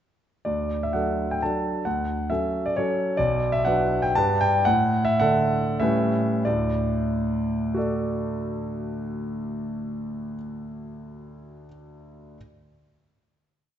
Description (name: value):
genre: classical, romantic triple-time dance for piano with dotted rhythms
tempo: 88-142 BPM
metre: 3/4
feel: rubato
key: D major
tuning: A4 = 443 Hz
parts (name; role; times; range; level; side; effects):
- warm concert grand piano; solo; 0.4-12.4 s; B1 to A5; -23 LUFS; equal; none
room: wet recital hall reverb, RT60 1.6 s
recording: dark, warm production, nothing above 7.8 kHz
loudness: -22 LUFS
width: side -10 dB against mid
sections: 0.5-6.5 A section; 6.5-10.2 final chord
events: slowing down 2.5-6.5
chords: 0.5 D; 1.9 F#m/D; 3.2 Bm; 4.2 G; 4.7 D/A; 5.8 A9; 6.5 D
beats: | 0.46 0.94 1.41 | 1.85 2.30 2.76 | 3.18 3.65 4.15 | 4.65 5.19 5.80 | 6.45 7.09 7.74 | 8.36 8.99 9.63